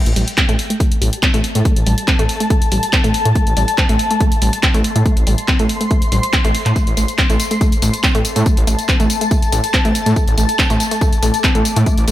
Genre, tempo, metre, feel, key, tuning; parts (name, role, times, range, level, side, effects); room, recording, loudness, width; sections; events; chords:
driving peak-time techno; 141 BPM; 4/4; straight; A minor; A4 = 439 Hz
analog pluck; riff; 0.0-12.1 s; G3 to C4; -21 LUFS; equal; chorus, tube saturation, sidechain pumping, tape echo
detuned saw bass; bass; 0.1-12.1 s; A1 to A2; -17 LUFS; equal; sidechain pumping
punchy analog drum machine; drums; 0.1-12.1 s; handclaps, hi-hat, tambourine; -20 LUFS; equal
electronic kick drum; drums; 0.4-12.0 s; -16 LUFS; equal; overdrive
granular cloud pad; texture; 0.7-12.1 s; A5 to D6; -23 LUFS; left 3 dB; built-in reverb, sidechain pumping
light reverb, digital ambience; -13 LUFS; side -14 dB against mid
0.0-12.1 A section
0.0 Am